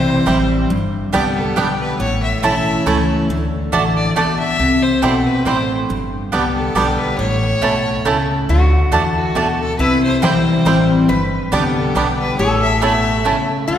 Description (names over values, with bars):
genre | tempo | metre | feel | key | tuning
bluegrass | 139 BPM | 3/4 | swing 54% on 8ths | unclear | A4 = 440 Hz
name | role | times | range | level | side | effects
clear fiddle | melody | 0.0-13.4 s | F#4 to E5 | -22 LUFS | left 2 dB | none
picked steel-string acoustic guitar | accompaniment | 0.0-13.8 s | G2 to G4 | -18 LUFS | left 1 dB | none
upright bass | bass | 0.0-13.8 s | G1 to E2 | -22 LUFS | equal | none
bluegrass banjo | melody | 0.3-13.4 s | G3 to E4 | -24 LUFS | right 3 dB | none
mandolin | stabs | 0.3-13.4 s | A3 to A5 | -22 LUFS | right 4 dB | none
lap resonator guitar | second line | 8.5-13.8 s | E4 to B4 | -23 LUFS | left 2 dB | none
room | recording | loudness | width
wet concert hall reverb, RT60 2.3 s | recorded in a church or concert hall | -14 LUFS | side -10 dB against mid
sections
0.0-13.8 A section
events
none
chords
0.0 C; 0.7 G; 2.0 A; 3.3 D; 4.6 C; 5.9 G; 7.2 A; 8.5 D; 9.8 C; 11.1 G; 12.4 A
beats
0.27 | 0.70 1.13 1.56 | 2.00 2.43 2.86 | 3.30 3.73 4.16 | 4.59 5.03 5.46 | 5.89 6.33 6.76 | 7.19 7.62 8.06 | 8.49 8.93 9.36 | 9.79 10.22 10.66 | 11.09 11.52 11.96 | 12.39 12.82 13.25 | 13.69